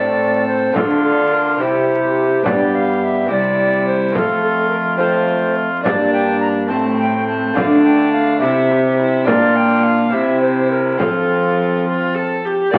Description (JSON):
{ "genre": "classical, renaissance-style consort dance", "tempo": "70 BPM (dotted quarters)", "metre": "6/8", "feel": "straight", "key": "unclear", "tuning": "A4 = 440 Hz", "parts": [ { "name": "tenor recorder", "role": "melody", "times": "0.0-12.8 s", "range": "A4 to Bb5", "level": "-22 LUFS", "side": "equal", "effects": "none" }, { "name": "rich viola", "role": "second line", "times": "0.0-12.8 s", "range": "C4 to D5", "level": "-23 LUFS", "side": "equal", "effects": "none" }, { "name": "lute", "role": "accompaniment", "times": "0.0-12.8 s", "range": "F2 to Bb4", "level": "-23 LUFS", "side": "equal", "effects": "none" }, { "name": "warm trombone", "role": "accompaniment", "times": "0.0-12.8 s", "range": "G3 to E4", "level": "-23 LUFS", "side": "equal", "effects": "none" }, { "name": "rich cello", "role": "bass", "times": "0.0-12.8 s", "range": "F2 to F3", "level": "-26 LUFS", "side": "equal", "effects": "none" }, { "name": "frame drum", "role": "percussion", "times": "0.8-12.8 s", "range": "none", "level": "-23 LUFS", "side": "equal", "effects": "none" } ], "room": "wet stone room reverb, RT60 1.1 s", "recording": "very old 78 rpm record, vinyl crackle", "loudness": "-16 LUFS", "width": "mono", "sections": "0.0-12.7 A section", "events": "none", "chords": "0.0 Am; 0.8 Dm; 1.6 C; 2.5 G; 3.3 C; 4.2 F; 5.9 Gm; 6.7 Am; 7.6 Dm; 8.4 C; 9.3 Bb; 10.1 C; 11.0 F" }